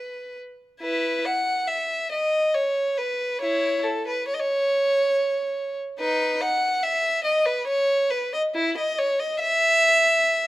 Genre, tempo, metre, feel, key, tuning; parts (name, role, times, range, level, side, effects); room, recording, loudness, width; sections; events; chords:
classical, baroque-style suite movement for unaccompanied violin; 70 BPM; 3/4; rubato; A4 = 440 Hz
rich violin; solo; 0.0-10.5 s; D#4 to F#5; -21 LUFS; equal
light reverb; close, detailed microphones; -21 LUFS; side -16 dB against mid
0.8-10.5 A section